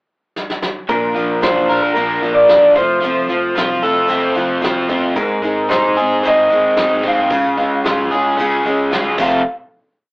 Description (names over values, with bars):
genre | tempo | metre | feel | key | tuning
folk rock and heartland rock | 112 BPM | 4/4 | straight | unclear | A4 = 440 Hz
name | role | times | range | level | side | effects
soft brush drum kit | drums | 0.4-9.3 s | crash cymbal, hi-hat, kick drum, snare drum | -22 LUFS | equal | none
electric guitar through a small old amp | melody | 0.9-9.4 s | Bb4 to F5 | -15 LUFS | equal | none
picked steel-string acoustic guitar | accompaniment | 0.9-9.4 s | F2 to A4 | -21 LUFS | equal | none
crunchy overdriven guitar | riff | 0.9-9.4 s | F2 to Bb4 | -17 LUFS | equal | none
fingered electric bass | bass | 0.9-9.4 s | F1 to Eb2 | -39 LUFS | equal | none
room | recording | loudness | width
moderate small room ambience, RT60 0.5 s | rough rehearsal-room recording, tube saturation, AM radio sound | -13 LUFS | side -40 dB against mid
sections
0.0-0.9 pickup bar; 0.9-9.5 verse; 9.5-10.1 final hit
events
drum fill 0.4-0.9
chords
0.0 N.C.; 0.9 Bb; 2.8 F; 5.2 Ab; 7.3 Db; 9.2 F; 9.5 N.C.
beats
0.35 | 0.89 1.42 1.96 2.49 | 3.03 3.56 4.10 4.63 | 5.17 5.71 6.24 6.78 | 7.31 7.85 8.38 8.92